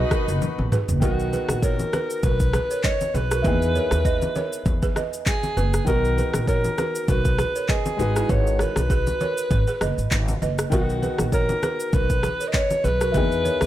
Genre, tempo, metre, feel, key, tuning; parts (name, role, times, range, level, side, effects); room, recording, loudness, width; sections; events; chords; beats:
afrobeats; 99 BPM; 4/4; swing 55% on 16ths; A4 = 441 Hz
warm alto saxophone; melody; 0.0-13.7 s; F#4 to D#5; -26 LUFS; left 1 dB
clear horn section; second line; 0.0-0.7 s; D#4 to B4; -31 LUFS; left 1 dB; digital delay
clear concert grand piano; accompaniment; 0.0-13.7 s; B2 to B4; -31 LUFS; left 4 dB
balafon; riff; 0.0-13.5 s; E4 to D#5; -29 LUFS; right 7 dB
upright bass; bass; 0.0-13.7 s; F#1 to E2; -24 LUFS; equal
afro-pop drum kit; drums; 0.1-13.7 s; handclaps, kick drum, rim click, shaker, toms; -24 LUFS; equal
congas; percussion; 0.1-13.7 s; -32 LUFS; left 2 dB
studio ambience; -20 LUFS; side -13 dB against mid
0.0-1.0 A section; 1.0-13.7 B section
drum fill 0.4-1.0
0.0 Bmaj7; 3.4 Emaj7; 5.9 Bmaj7; 8.0 G#m7; 10.7 Bmaj7; 13.1 Emaj7
0.41 | 1.02 1.63 2.23 2.84 | 3.45 4.05 4.66 5.26 | 5.87 6.48 7.08 7.69 | 8.29 8.90 9.51 10.11 | 10.72 11.32 11.93 12.54 | 13.14